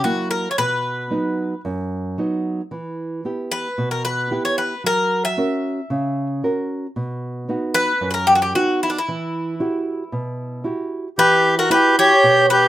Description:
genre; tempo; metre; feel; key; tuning
greek folk, Greek bouzouki band; 113 BPM; 4/4; straight; E dorian sharp4; A4 = 440 Hz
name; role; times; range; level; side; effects
Greek bouzouki; melody; 0.0-12.7 s; D4 to E5; -18 LUFS; equal; none
nylon-string guitar; accompaniment; 0.0-12.7 s; F#2 to A#4; -23 LUFS; right 2 dB; none
accordion; second line; 11.2-12.7 s; F#4 to G4; -14 LUFS; left 1 dB; none
room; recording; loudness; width
moderate studio reverb, RT60 0.6 s; rough home demo mix; -18 LUFS; side -14 dB against mid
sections
0.0-11.2 A section; 11.2-12.7 B section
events
none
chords
0.0 F#7; 0.6 B; 2.7 Em; 4.8 F#; 7.0 B; 9.1 Emadd9

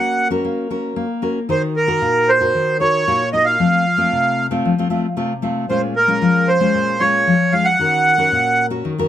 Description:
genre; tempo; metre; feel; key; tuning
samba; 114 BPM; 4/4; straight; Bb minor; A4 = 440 Hz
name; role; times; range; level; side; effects
accordion; melody; 0.0-8.7 s; Bb4 to Gb5; -15 LUFS; right 2 dB; none
nylon-string guitar; accompaniment; 0.0-9.1 s; Bb2 to Bb4; -19 LUFS; left 3 dB; none
room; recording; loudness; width
light reverb; close, detailed microphones; -14 LUFS; side -11 dB against mid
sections
0.0-9.1 A section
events
none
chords
0.0 Gb/Bb; 1.5 Ebm; 3.6 F; 5.7 Bbm7; 7.8 Ebm7

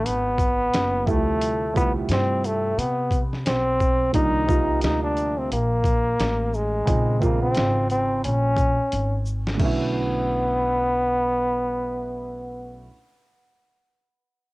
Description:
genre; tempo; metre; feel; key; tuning
hip hop, jazz-hop; 88 BPM; 4/4; swing 58% on 16ths; unclear; A4 = 440 Hz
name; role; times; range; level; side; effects
clear trombone; melody; 0.0-12.9 s; G#3 to Eb4; -23 LUFS; equal; cassette tape
dark upright piano; accompaniment; 0.0-12.9 s; C3 to F#4; -28 LUFS; right 4 dB; none
upright bass; bass; 0.0-12.9 s; F#1 to C3; -27 LUFS; equal; none
boom bap sampler-style drum kit; drums; 0.1-9.8 s; crash cymbal, hi-hat, kick drum, shaker, snare drum; -25 LUFS; equal; cassette tape
room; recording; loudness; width
light reverb; home recording on cassette; -20 LUFS; side -21 dB against mid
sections
0.0-9.6 A section; 9.6-12.3 B section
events
drum fill 8.9-9.6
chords
0.0 B5; 1.1 Dm11; 4.1 Cm11; 6.9 A#m9; 9.6 Bm11

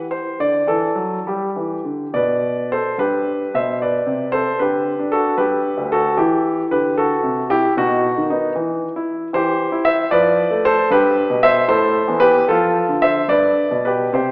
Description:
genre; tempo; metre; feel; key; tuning
classical, baroque-style suite movement for grand piano; 67-78 BPM (dotted quarters); 6/8; rubato; G major; A4 = 438 Hz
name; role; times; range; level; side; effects
warm baby grand piano; solo; 0.0-14.3 s; D2 to E5; -15 LUFS; equal; none
room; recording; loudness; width
wet recital hall reverb, RT60 1.7 s; recorded in a church or concert hall, AM radio sound; -15 LUFS; side -25 dB against mid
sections
0.0-3.0 A section; 3.0-14.3 B section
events
none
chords
0.4 D; 1.3 G; 4.6 D; 6.2 Em; 7.8 B; 8.6 N.C.; 9.3 C/E; 10.1 F; 10.9 G; 11.7 Am; 12.5 Dm/F; 13.3 G

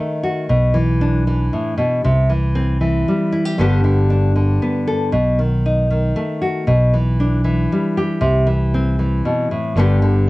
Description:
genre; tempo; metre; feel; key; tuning
acoustic folk duo or small band; 117 BPM; 3/4; straight; unclear; A4 = 440 Hz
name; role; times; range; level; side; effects
nylon-string guitar; accompaniment; 0.0-10.3 s; G2 to A4; -17 LUFS; left 1 dB; none
fingered electric bass; bass; 0.5-10.3 s; G1 to C2; -17 LUFS; equal; none
room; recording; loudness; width
light reverb; worn, warbling old tape, cassette tape, warbly pitch drift; -15 LUFS; side -20 dB against mid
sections
0.0-10.3 A section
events
none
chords
0.5 E5/B; 2.0 C; 3.6 G; 5.1 B7; 6.7 Em7/B; 8.2 C; 9.8 G

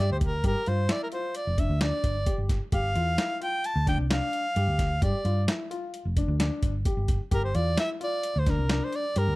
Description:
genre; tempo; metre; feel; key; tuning
progressive instrumental, band music in an uneven meter; 131 BPM; 5/4; straight; G dorian; A4 = 440 Hz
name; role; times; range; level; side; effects
bright soprano saxophone; melody; 0.0-9.4 s; Bb4 to A5; -29 LUFS; right 1 dB; none
dark baby grand piano; arpeggios; 0.0-9.4 s; D4 to G4; -34 LUFS; left 4 dB; none
hollow-body short-scale fingered electric bass; bass; 0.0-9.4 s; F1 to G2; -27 LUFS; equal; none
breakbeat sampler-style drum kit; drums; 0.2-9.3 s; hi-hat, kick drum, snare drum; -28 LUFS; equal; none
room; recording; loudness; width
digital ambience; dry, close 1970s-style studio recording; -24 LUFS; side -20 dB against mid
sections
0.0-9.4 A section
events
none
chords
0.0 G7(no3)

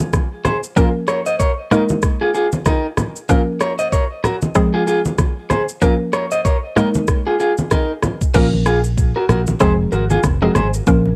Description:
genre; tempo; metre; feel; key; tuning
afrobeats; 95 BPM; 4/4; swing 58% on 16ths; Bb minor; A4 = 443 Hz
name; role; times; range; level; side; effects
mallet-like synth pluck; accompaniment; 0.0-11.2 s; F3 to Bb4; -21 LUFS; equal; chorus, cassette tape
afro-pop drum kit; drums; 0.0-11.0 s; crash cymbal, kick drum, rim click, shaker; -21 LUFS; equal; cassette tape
congas; percussion; 0.0-11.2 s; none; -24 LUFS; equal; none
electric guitar at the edge of break-up; riff; 0.4-10.7 s; Eb4 to Eb5; -22 LUFS; equal; cassette tape, tape echo
fingered electric bass; bass; 8.3-11.2 s; F1 to Bb1; -21 LUFS; equal; none
room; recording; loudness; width
light reverb; home recording on cassette; -17 LUFS; mono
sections
0.0-8.3 A section; 8.3-11.2 B section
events
none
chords
0.0 Fm; 0.8 Bbm; 1.7 Ebsus4; 3.3 Bbm; 4.6 Fm; 5.8 Bbm; 6.8 Ebsus4; 8.3 Bbm; 9.6 Fm

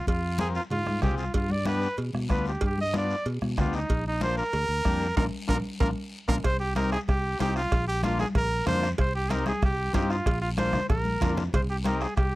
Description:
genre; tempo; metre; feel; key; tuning
latin, cumbia; 188 BPM; 4/4; straight; C minor; A4 = 440 Hz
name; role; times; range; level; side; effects
clear trumpet; melody; 0.0-12.4 s; Eb4 to Eb5; -29 LUFS; right 1 dB; none
fingered electric bass; bass; 0.1-12.4 s; Bb1 to B2; -30 LUFS; equal; none
bombo; percussion; 0.1-12.3 s; none; -28 LUFS; equal; none
congas; percussion; 0.1-12.0 s; none; -34 LUFS; left 2 dB; none
cowbell and timbales; percussion; 0.1-12.3 s; none; -36 LUFS; right 5 dB; none
guiro; percussion; 0.1-12.4 s; none; -45 LUFS; left 3 dB; none
overdriven combo organ; accompaniment; 0.4-12.1 s; Bb3 to Bb4; -32 LUFS; left 4 dB; none
room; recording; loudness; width
little or no reverb; dry, close 1970s-style studio recording; -24 LUFS; side -18 dB against mid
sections
0.0-6.4 A section; 6.4-12.4 B section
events
band accent 5.2-6.4; transistor combo organ fill 5.5-6.4; drum fill 5.6-6.4, 11.1-11.5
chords
0.0 Fm; 1.3 G7; 3.9 Bb; 6.4 Cm; 7.7 Bb; 9.0 Cm; 10.3 Bb; 11.5 Cm

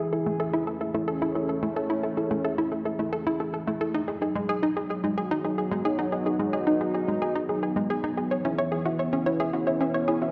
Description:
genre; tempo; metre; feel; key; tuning
ambient, sequencer-driven space music; 110 BPM; 4/4; straight; A lydian; A4 = 438 Hz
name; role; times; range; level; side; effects
sweeping resonant pad; sustained chords; 0.0-10.3 s; E3 to G#4; -32 LUFS; equal; chorus
soft round pluck; arpeggios; 0.0-10.3 s; D#4 to G#5; -33 LUFS; equal; chorus, delay
hollow square pluck; riff; 0.0-10.3 s; G#3 to C#5; -31 LUFS; equal; chorus, delay
room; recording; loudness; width
wet concert hall reverb, RT60 2.2 s; worn, warbling old tape, cassette tape, warbly pitch drift; -27 LUFS; mono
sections
0.0-10.3 A section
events
none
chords
0.0 Amaj7; 3.9 G#m7; 8.3 C#m7

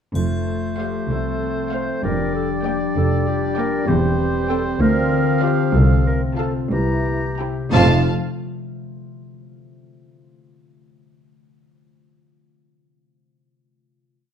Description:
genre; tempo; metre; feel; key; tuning
cinematic, playful, whimsical film cue; 58-66 BPM (dotted quarters); 6/8; straight; F major; A4 = 440 Hz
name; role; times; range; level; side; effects
clear oboe; second line; 0.1-8.0 s; C5 to Bb5; -30 LUFS; right 2 dB; none
warm clarinet; second line; 0.1-8.0 s; F4 to C5; -28 LUFS; left 1 dB; none
warm French horn section; sustained chords; 0.1-8.0 s; A3 to E4; -26 LUFS; left 1 dB; none
warm chamber double bass section; bass; 0.1-8.1 s; E1 to D2; -22 LUFS; right 1 dB; none
warm bassoon; accompaniment; 0.2-8.0 s; E3 to A3; -28 LUFS; right 2 dB; none
concert harp; arpeggios; 0.2-8.1 s; C3 to F5; -26 LUFS; left 6 dB; none
rich chamber cello section; bass; 0.2-8.1 s; C2 to F2; -24 LUFS; right 1 dB; none
triangle; percussion; 0.2-1.4 s; none; -45 LUFS; equal; none
rich studio violin section; melody; 0.8-8.1 s; F5 to Bb5; -30 LUFS; left 1 dB; none
rich chamber violin section; second line; 0.8-8.1 s; C5 to G5; -30 LUFS; right 2 dB; none
rich chamber viola section; accompaniment; 0.8-8.1 s; A3 to F4; -29 LUFS; right 3 dB; none
room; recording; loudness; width
wet stone room reverb, RT60 1.1 s; dark, warm production; -17 LUFS; side -8 dB against mid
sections
0.1-7.7 A section; 7.7-9.7 final chord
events
none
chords
0.1 F; 2.0 Gm7/F; 3.9 C/E; 4.8 Bb/D; 5.7 F/C; 6.7 C7; 7.7 F

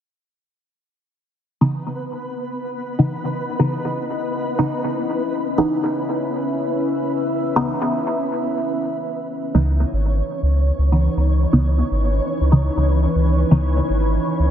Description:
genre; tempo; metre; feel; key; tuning
dub techno; 121 BPM; 4/4; swing 55% on 16ths; C# minor; A4 = 440 Hz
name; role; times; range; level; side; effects
deep dark ambient pad; sustained chords; 3.6-14.5 s; E3 to E5; -24 LUFS; equal; chorus, built-in reverb
filtered dub chord stab; stabs; 1.6-13.8 s; C#3 to D#4; -20 LUFS; equal; phaser, dub echo
flickering grainy texture; texture; 1.8-14.5 s; B3 to C#5; -28 LUFS; equal; built-in reverb
warm sub bass; bass; 9.5-14.5 s; G#1 to C#2; -17 LUFS; equal; none
room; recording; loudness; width
moderate lush hall reverb, RT60 2.7 s; dense, heavily limited modern master; -18 LUFS; side -9 dB against mid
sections
1.6-9.5 A section; 9.5-14.5 B section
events
filter sweep on synth stab 1.6-9.5, 9.5-14.5; break 8.6-9.5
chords
1.6 C#m9

